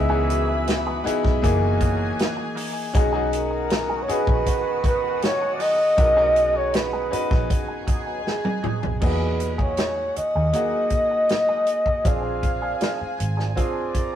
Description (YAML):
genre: lush 1970s-style soul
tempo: 79 BPM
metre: 4/4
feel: straight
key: B major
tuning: A4 = 440 Hz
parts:
  - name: breathy flugelhorn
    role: melody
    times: 0.0-14.2 s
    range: A#4 to E#5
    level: -22 LUFS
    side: equal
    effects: none
  - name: rich studio violin section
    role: second line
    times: 0.0-14.2 s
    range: F#4 to B5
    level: -36 LUFS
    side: left 2 dB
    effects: analog delay
  - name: bright grand piano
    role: accompaniment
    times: 0.0-14.2 s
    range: A#2 to B4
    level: -27 LUFS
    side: left 1 dB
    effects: none
  - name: mellow horn section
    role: stabs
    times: 0.0-8.6 s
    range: D#3 to G#4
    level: -35 LUFS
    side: right 1 dB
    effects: none
  - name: vintage muted fingered electric bass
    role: bass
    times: 0.0-13.5 s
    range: F#1 to E2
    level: -26 LUFS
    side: equal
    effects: none
  - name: direct-recorded clean electric guitar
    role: riff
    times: 0.1-14.2 s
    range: E3 to G#4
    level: -34 LUFS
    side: right 3 dB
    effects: wah
  - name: warm soul drum kit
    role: drums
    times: 0.3-14.1 s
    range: crash cymbal, hi-hat, kick drum, snare drum, toms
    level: -24 LUFS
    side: equal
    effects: none
  - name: vibraphone with medium mallets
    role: texture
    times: 0.3-9.4 s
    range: B3 to A#5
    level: -36 LUFS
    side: right 2 dB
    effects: none
room: wet stone room reverb, RT60 1.3 s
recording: rough rehearsal-room recording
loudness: -20 LUFS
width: side -10 dB against mid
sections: 0.0-9.0 A section; 9.0-14.2 B section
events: drum fill 8.3-9.0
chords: 0.0 C#m9; 1.4 F#13; 2.9 B6; 9.0 Emaj9#11; 12.1 A#7